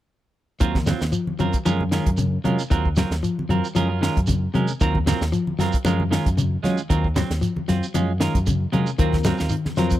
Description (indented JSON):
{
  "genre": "afrobeat",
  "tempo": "115 BPM",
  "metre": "4/4",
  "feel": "swing 54% on 16ths",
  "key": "Eb dorian",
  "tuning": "A4 = 439 Hz",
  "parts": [
    { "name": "electric guitar at the edge of break-up", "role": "arpeggios", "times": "0.6-10.0 s", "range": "C3 to Gb3", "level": "-25 LUFS", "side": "left 4 dB", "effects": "spring reverb" },
    { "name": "clean electric guitar", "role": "stabs", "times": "0.6-9.9 s", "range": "Gb3 to Bb4", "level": "-27 LUFS", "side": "right 6 dB", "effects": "wide subtle chorus" },
    { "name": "fingered electric bass", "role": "bass", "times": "0.6-10.0 s", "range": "Eb2 to Gb3", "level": "-24 LUFS", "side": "equal", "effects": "none" },
    { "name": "tight funk drum kit", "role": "drums", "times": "0.6-10.0 s", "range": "hi-hat, kick drum, snare drum", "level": "-24 LUFS", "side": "equal", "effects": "none" },
    { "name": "shekere", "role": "percussion", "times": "0.6-10.0 s", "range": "none", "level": "-30 LUFS", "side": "right 2 dB", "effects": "none" },
    { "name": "congas", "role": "percussion", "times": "0.8-9.9 s", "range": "none", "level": "-28 LUFS", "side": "equal", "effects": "none" },
    { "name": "reed electric piano", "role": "accompaniment", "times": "9.0-10.0 s", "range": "C4 to C5", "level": "-27 LUFS", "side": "left 10 dB", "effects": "overdrive" }
  ],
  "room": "small room ambience",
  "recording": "dry, close 1970s-style studio recording",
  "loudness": "-19 LUFS",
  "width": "side -13 dB against mid",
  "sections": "0.6-10.0 A section",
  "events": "none",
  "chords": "0.6 Ebm69; 1.7 Gbmaj9; 2.7 Ebm69; 3.8 Gbmaj9; 4.8 Ebm69; 5.9 Gbmaj9; 6.9 Ebm69; 7.9 Gbmaj9; 9.0 Ebm69"
}